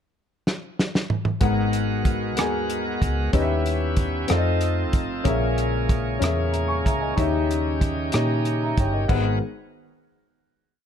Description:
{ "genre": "slow gospel", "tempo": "63 BPM (dotted quarters)", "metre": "6/8", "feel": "straight", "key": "G# minor", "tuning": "A4 = 440 Hz", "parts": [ { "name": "warm soul drum kit", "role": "drums", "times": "0.5-9.2 s", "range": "crash cymbal, hi-hat, kick drum, rim click, snare drum, toms", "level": "-23 LUFS", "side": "right 1 dB", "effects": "none" }, { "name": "warm grand piano", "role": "accompaniment", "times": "1.4-9.4 s", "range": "G#1 to C#6", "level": "-25 LUFS", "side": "left 3 dB", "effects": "none" }, { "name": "bright tonewheel organ", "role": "sustained chords", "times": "1.4-9.4 s", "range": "C#3 to A#4", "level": "-30 LUFS", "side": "right 2 dB", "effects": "fast rotary speaker, overdrive" }, { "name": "mellow French horn section", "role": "sustained chords", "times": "1.4-9.4 s", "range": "D#3 to A#4", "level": "-35 LUFS", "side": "right 4 dB", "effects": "none" }, { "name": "hollow-body short-scale fingered electric bass", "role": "bass", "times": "1.4-9.4 s", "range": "G1 to A#2", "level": "-26 LUFS", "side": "right 1 dB", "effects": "none" } ], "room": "little or no reverb", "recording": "dark, warm production", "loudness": "-21 LUFS", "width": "side -8 dB against mid", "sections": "0.0-1.4 pickup bar; 1.4-9.1 verse; 9.1-10.9 final chord", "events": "drum fill 0.5-1.4", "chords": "0.0 N.C.; 1.4 G#m9; 3.3 D#7b9b13; 4.3 F7; 5.3 A#m7b5; 7.2 D#7b9; 9.1 G#m9" }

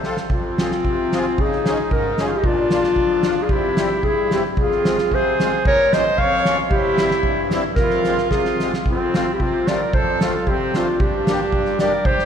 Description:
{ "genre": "alpine folk, alpine dance band", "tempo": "112 BPM", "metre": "2/4", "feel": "rubato", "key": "F minor, F major from 8.9 s", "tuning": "A4 = 441 Hz", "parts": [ { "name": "musette accordion", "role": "accompaniment", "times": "0.0-12.3 s", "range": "F2 to A4", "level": "-25 LUFS", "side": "left 2 dB", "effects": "none" }, { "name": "natural country drum kit", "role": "drums", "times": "0.0-12.3 s", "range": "hi-hat, kick drum, snare drum", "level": "-22 LUFS", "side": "right 1 dB", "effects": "none" }, { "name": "warm clarinet", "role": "melody", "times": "0.3-12.3 s", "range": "F4 to F5", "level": "-20 LUFS", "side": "left 1 dB", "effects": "none" }, { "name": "bright trumpet", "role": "second line", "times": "0.3-12.3 s", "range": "C4 to Db5", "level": "-25 LUFS", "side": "right 3 dB", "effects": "none" } ], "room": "wet church reverb, RT60 3.6 s", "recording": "recorded in a church or concert hall", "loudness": "-16 LUFS", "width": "side -8 dB against mid", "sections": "0.3-8.9 A section; 8.9-12.3 B section", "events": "drum fill 0.0-0.3, 7.8-8.9", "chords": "0.3 Fm; 1.4 Dbsus2; 2.4 Bb; 3.5 C; 4.6 Fm; 5.7 Bbm; 6.7 C; 7.8 Fm; 8.9 F; 11.0 Gm" }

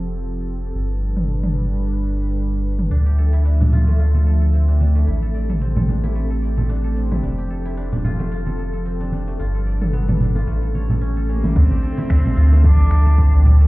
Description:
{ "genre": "organic downtempo", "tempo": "111 BPM", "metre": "4/4", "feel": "swing 55% on 16ths", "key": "D minor", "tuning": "A4 = 440 Hz", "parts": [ { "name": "airy breathy pad", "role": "sustained chords", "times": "0.0-13.7 s", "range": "D3 to E5", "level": "-28 LUFS", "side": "right 1 dB", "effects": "chorus, sidechain pumping" }, { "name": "round analog bass", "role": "bass", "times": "0.0-13.7 s", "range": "F1 to D2", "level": "-17 LUFS", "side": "equal", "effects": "sidechain pumping" }, { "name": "deep house drum kit", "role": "drums", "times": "1.2-13.7 s", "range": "cabasa, finger snaps, toms", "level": "-25 LUFS", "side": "equal", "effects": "overdrive" }, { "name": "guzheng", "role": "arpeggios", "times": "2.9-13.7 s", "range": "A3 to D5", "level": "-31 LUFS", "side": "left 3 dB", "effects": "ping-pong delay" }, { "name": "congas and bongos", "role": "percussion", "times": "3.6-13.6 s", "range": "none", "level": "-23 LUFS", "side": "right 1 dB", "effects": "none" }, { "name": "rich cello", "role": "melody", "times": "11.3-13.5 s", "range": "Bb3 to D4", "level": "-26 LUFS", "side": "equal", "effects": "none" }, { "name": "electronic kick drum", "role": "drums", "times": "11.6-13.3 s", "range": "none", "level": "-17 LUFS", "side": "equal", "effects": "overdrive" } ], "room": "studio ambience", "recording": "heard muffled through a wall, stone room reverb, EQ", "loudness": "-16 LUFS", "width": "side -20 dB against mid", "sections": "0.0-11.6 A section; 11.6-13.7 B section", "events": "filter sweep on analog synth pad 0.0-11.6", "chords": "0.0 Fadd9; 0.8 G; 2.9 Dm9; 5.1 Am7; 7.2 Fmaj9; 9.4 G7; 10.5 A7; 11.6 Dm9" }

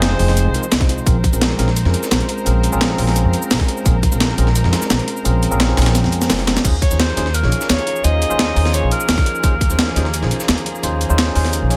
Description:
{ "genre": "liquid drum and bass", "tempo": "172 BPM", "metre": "4/4", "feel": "straight", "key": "unclear", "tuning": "A4 = 439 Hz", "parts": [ { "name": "clear alto saxophone", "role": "melody", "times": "0.0-0.9, 6.8-10.3 s", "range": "Bb4 to Eb5", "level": "-26 LUFS", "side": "equal", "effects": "tape echo" }, { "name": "tine electric piano", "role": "accompaniment", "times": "0.0-11.8 s", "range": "Ab3 to Db5", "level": "-26 LUFS", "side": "equal", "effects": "tape echo" }, { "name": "muted studio string section", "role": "sustained chords", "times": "0.0-11.8 s", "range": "F3 to C5", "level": "-30 LUFS", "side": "equal", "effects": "vintage 12-bit sampler grit, sidechain pumping" }, { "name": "upright bass", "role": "bass", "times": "0.0-11.7 s", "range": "F1 to F2", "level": "-20 LUFS", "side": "equal", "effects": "none" }, { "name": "breakbeat sampler-style drum kit", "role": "drums", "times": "0.0-11.8 s", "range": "cabasa, crash cymbal, hi-hat, snare drum", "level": "-23 LUFS", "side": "equal", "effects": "overdrive" }, { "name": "breakbeat sampler-style drum kit", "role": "drums", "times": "0.0-11.8 s", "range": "hi-hat, snare drum", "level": "-28 LUFS", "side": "equal", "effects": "high-pass filter on hats, high-pass filter on snare, high-pass filter on room" }, { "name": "electronic kick drum", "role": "drums", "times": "0.8-1.3, 3.6-4.1, 6.6-6.9, 9.2-9.7 s", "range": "none", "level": "-18 LUFS", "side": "equal", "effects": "none" } ], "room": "digital ambience", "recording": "none", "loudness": "-17 LUFS", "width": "mono", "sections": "0.0-11.8 A section", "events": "drum fill 5.9-6.6; kick drops out 6.3-6.6", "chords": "0.0 Fm7; 1.1 Bbm9; 6.6 Eb13sus4" }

